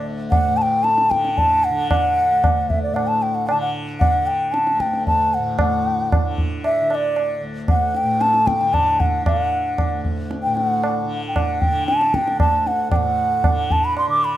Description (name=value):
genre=indian classical, Hindustani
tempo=114 BPM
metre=7/4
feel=straight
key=unclear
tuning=A4 = 439 Hz
part: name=mellow bansuri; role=melody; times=0.0-14.4 s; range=D5 to D6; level=-18 LUFS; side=equal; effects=none
part: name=tanpura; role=drone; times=0.0-14.4 s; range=D2 to D3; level=-27 LUFS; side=left 2 dB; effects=none
part: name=tabla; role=percussion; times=0.3-14.2 s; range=none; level=-22 LUFS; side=right 1 dB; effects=none
room=moderate spring reverb, RT60 2.1 s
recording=none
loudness=-17 LUFS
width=side -13 dB against mid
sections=0.0-5.6 A section; 5.6-14.4 B section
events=none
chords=none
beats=0.32 0.84 1.37 | 1.90 2.43 2.96 3.48 4.01 4.54 5.06 | 5.59 6.11 6.64 7.17 7.69 8.21 8.74 | 9.26 9.79 10.31 10.84 11.36 11.88 12.40 | 12.93 13.45 13.97